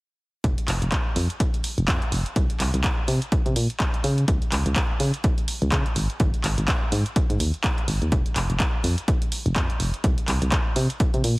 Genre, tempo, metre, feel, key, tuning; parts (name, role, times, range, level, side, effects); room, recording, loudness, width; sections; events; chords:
piano house; 125 BPM; 4/4; swing 58% on 16ths; A4 = 438 Hz
solid FM bass; bass; 0.4-11.4 s; F1 to Db3; -23 LUFS; equal; sidechain pumping
electronic kick drum; drums; 0.4-11.1 s; -23 LUFS; equal
punchy analog drum machine; drums; 0.4-11.4 s; handclaps, hi-hat; -28 LUFS; equal
little or no reverb; heavily compressed radio sound, multiband compression; -21 LUFS; side -23 dB against mid
0.4-11.4 A section